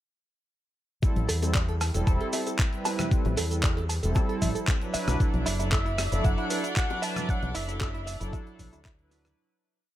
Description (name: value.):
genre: nu-disco, nu disco.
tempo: 115 BPM.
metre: 4/4.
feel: straight.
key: A dorian.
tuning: A4 = 436 Hz.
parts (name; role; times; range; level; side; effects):
warm analog pad; accompaniment; 1.0-9.3 s; F#3 to B4; -33 LUFS; right 2 dB; chorus, tremolo, ping-pong delay.
fingered electric bass with an envelope filter; bass; 1.0-9.3 s; E1 to E2; -29 LUFS; equal; sidechain pumping.
dusty soul sampler-style drum kit; drums; 1.0-9.4 s; handclaps, hi-hat, rim click, shaker; -33 LUFS; equal; small room ambience.
electronic kick drum; drums; 1.0-9.0 s; none; -26 LUFS; equal; small room ambience.
egg shaker, bongos and congas; percussion; 1.0-9.4 s; none; -38 LUFS; left 5 dB; none.
direct-recorded clean electric guitar; riff; 1.3-9.3 s; D4 to A5; -35 LUFS; right 2 dB; wide subtle chorus, ping-pong delay.
rich chamber string section; sustained chords; 5.2-9.4 s; D4 to D5; -38 LUFS; right 1 dB; sidechain pumping.
wide unison lead; melody; 5.7-8.3 s; E5 to A5; -35 LUFS; equal; cassette tape, dub echo.
room: little or no reverb.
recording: none.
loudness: -24 LUFS.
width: side -13 dB against mid.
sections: 1.0-9.4 drop.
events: drop 1.0-9.4; fade-out 6.6-9.4.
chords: 1.0 Am7; 4.9 E9sus4.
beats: | 1.03 1.55 2.07 2.59 | 3.12 3.64 4.16 4.68 | 5.20 5.72 6.25 6.77 | 7.29 7.81 8.33 8.85.